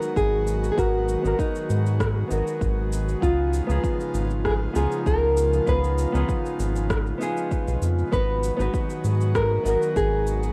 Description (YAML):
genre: sunset chillout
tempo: 98 BPM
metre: 4/4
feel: straight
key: G# dorian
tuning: A4 = 441 Hz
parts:
  - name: nylon-string guitar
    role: melody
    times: 0.0-10.5 s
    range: D#4 to B4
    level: -28 LUFS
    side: equal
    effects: vintage 12-bit sampler grit, cassette tape, tape echo, shimmer reverb
  - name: nylon-string guitar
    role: accompaniment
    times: 0.0-10.5 s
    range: B3 to B4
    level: -32 LUFS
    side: equal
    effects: low-pass filter, cassette tape, tape echo, shimmer reverb
  - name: airy breathy pad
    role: sustained chords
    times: 0.0-10.5 s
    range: C#3 to F#4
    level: -34 LUFS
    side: equal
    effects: chorus, cassette tape
  - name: electronic shaker and rim click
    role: drums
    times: 0.0-10.5 s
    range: none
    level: -36 LUFS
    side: equal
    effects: overdrive, cassette tape
  - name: round analog bass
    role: bass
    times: 0.2-10.5 s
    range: G#1 to G#2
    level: -26 LUFS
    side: equal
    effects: none
  - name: electronic kick drum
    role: drums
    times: 0.2-10.1 s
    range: none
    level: -29 LUFS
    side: equal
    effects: overdrive, cassette tape
room: moderate studio reverb, RT60 0.6 s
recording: home recording on cassette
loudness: -23 LUFS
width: mono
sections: 0.0-10.5 A section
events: filter sweep on nylon-string guitar 0.0-10.5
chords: 0.0 G#m7; 3.2 C#7; 8.1 G#m7